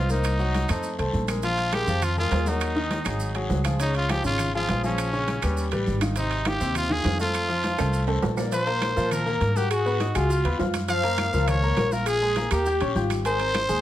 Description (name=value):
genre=latin, salsa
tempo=203 BPM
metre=4/4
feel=straight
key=unclear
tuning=A4 = 440 Hz
part: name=growling trumpet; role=melody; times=0.0-13.8 s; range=Db4 to F5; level=-27 LUFS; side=equal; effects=none
part: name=clear concert grand piano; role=accompaniment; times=0.0-13.8 s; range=C3 to G6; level=-29 LUFS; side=left 2 dB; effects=none
part: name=upright bass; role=bass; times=0.0-13.8 s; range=Ab1 to Bb2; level=-26 LUFS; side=equal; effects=none
part: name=congas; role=percussion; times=0.1-13.7 s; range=none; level=-34 LUFS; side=equal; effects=none
part: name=guiro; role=percussion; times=0.1-13.8 s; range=none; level=-42 LUFS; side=left 3 dB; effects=none
part: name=maracas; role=percussion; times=0.1-13.8 s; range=none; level=-41 LUFS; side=right 4 dB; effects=none
part: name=claves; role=percussion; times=0.2-13.7 s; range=none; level=-40 LUFS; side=right 6 dB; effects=none
part: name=timbales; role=percussion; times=0.2-13.7 s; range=none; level=-34 LUFS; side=right 8 dB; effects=none
part: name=warm velvety synth lead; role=second line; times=8.5-13.8 s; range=F4 to C5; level=-28 LUFS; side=left 2 dB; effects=chorus, slapback echo
room=light reverb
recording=close, detailed microphones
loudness=-22 LUFS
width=side -13 dB against mid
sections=0.0-8.5 A section; 8.5-13.8 B section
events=drum fill 7.8-8.5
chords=0.2 Cm7b5; 0.8 F; 1.4 Bb5; 2.6 Ebm; 3.2 Dbadd11/Ab; 3.8 Db6; 5.0 Bbm7; 5.6 Ebaug; 6.2 Ab6; 7.3 F; 8.5 Bbsus2; 9.7 Abm7; 10.3 Db9; 10.9 Gbmaj7; 12.1 Bb5; 12.7 Eb9; 13.2 Ab